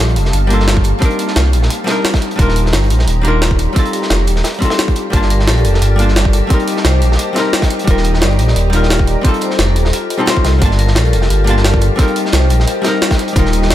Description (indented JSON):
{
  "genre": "liquid drum and bass",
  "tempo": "175 BPM",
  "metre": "4/4",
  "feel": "swing 53% on 16ths",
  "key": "unclear",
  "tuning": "A4 = 440 Hz",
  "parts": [
    { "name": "archtop guitar, miked and amplified", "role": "accompaniment", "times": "0.0-13.7 s", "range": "G3 to A5", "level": "-18 LUFS", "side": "left 2 dB", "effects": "tape echo" },
    { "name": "shimmering ambient pad", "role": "sustained chords", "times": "0.0-13.7 s", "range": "G4 to Eb6", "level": "-23 LUFS", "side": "equal", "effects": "chorus, built-in reverb, sidechain pumping" },
    { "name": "dark detuned saw bass", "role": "bass", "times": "0.0-13.7 s", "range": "Eb1 to C2", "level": "-13 LUFS", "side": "equal", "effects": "none" },
    { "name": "crunchy breakbeat drum kit", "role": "drums", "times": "0.0-13.7 s", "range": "hi-hat, snare drum", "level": "-23 LUFS", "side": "equal", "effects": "high-pass filter on hats, high-pass filter on snare, high-pass filter on room" },
    { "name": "jungle sampler-style drum kit", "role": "drums", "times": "0.2-13.7 s", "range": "hi-hat, snare drum", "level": "-20 LUFS", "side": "equal", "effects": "none" },
    { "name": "electronic kick drum", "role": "drums", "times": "0.8-13.4 s", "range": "none", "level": "-13 LUFS", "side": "equal", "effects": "none" },
    { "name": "vibraphone with hard mallets", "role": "arpeggios", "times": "5.1-13.7 s", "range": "F4 to G5", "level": "-22 LUFS", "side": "left 3 dB", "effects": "tape echo" }
  ],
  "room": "studio ambience",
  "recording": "none",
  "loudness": "-11 LUFS",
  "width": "side -12 dB against mid",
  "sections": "0.0-13.7 A section",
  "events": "none",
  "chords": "0.0 Gm9; 1.0 Cm7; 2.4 Ebmaj7; 3.8 F9; 5.1 Gm9; 6.5 Cm7; 7.9 Ebmaj7; 9.2 F9; 10.6 Gm9; 12.0 Cm7"
}